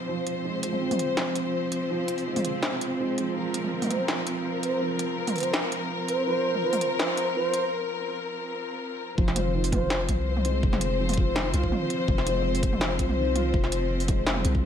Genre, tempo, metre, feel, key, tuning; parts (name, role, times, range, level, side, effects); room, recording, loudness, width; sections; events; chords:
half-time drum and bass; 165 BPM; 4/4; swing 54% on 16ths, half-time; F minor; A4 = 441 Hz
warm studio string section; sustained chords; 0.0-14.7 s; F3 to C5; -29 LUFS; left 3 dB; sidechain pumping
felt-muted upright piano; arpeggios; 0.0-14.7 s; Eb3 to F4; -33 LUFS; right 5 dB; vintage 12-bit sampler grit, low-pass filter, dub echo
industrial drum kit; drums; 0.3-14.5 s; hi-hat, snare drum, toms; -30 LUFS; right 1 dB
mellow hollow concert flute; melody; 3.9-10.0 s; C5; -30 LUFS; right 1 dB; vintage 12-bit sampler grit, ping-pong delay
long sustained 808-style bass; bass; 9.2-14.7 s; F1 to C2; -28 LUFS; equal
electronic kick drum; drums; 9.2-14.6 s; -26 LUFS; equal
moderate digital room reverb, RT60 1.0 s, small room ambience; high-pass filter; -24 LUFS; side -8 dB against mid
0.0-9.2 A section; 9.2-14.7 B section
build-up 0.0-9.2; filter sweep on felt piano 0.0-9.2; break 7.7-9.2; drop 9.2-14.7
0.0 F5